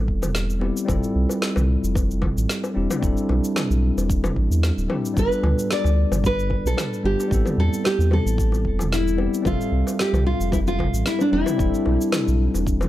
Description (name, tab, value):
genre	sunset chillout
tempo	112 BPM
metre	4/4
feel	swing 54% on 16ths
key	C major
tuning	A4 = 439 Hz
part	tine electric piano	accompaniment	0.0-12.9 s	G3 to E5	-25 LUFS	equal	auto-pan, tape echo
part	round analog bass	bass	0.0-12.9 s	D1 to E2	-22 LUFS	equal	none
part	electronic kick drum	drums	0.1-12.8 s	none	-25 LUFS	equal	none
part	deep house drum kit	drums	0.2-12.9 s	shaker, snare drum, toms	-29 LUFS	right 1 dB	none
part	bongos	percussion	0.2-12.9 s	none	-32 LUFS	left 4 dB	none
part	nylon-string guitar	melody	5.2-12.9 s	D4 to D5	-24 LUFS	left 1 dB	tape echo
room	light reverb, digital ambience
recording	dry, gritty hardware recording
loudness	-19 LUFS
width	side -14 dB against mid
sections	0.0-12.9 A section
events	none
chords	0.0 Am7; 0.9 Fmaj7; 2.8 C6/E; 5.2 G7; 7.3 Am7; 9.5 Fmaj7; 11.3 C6/E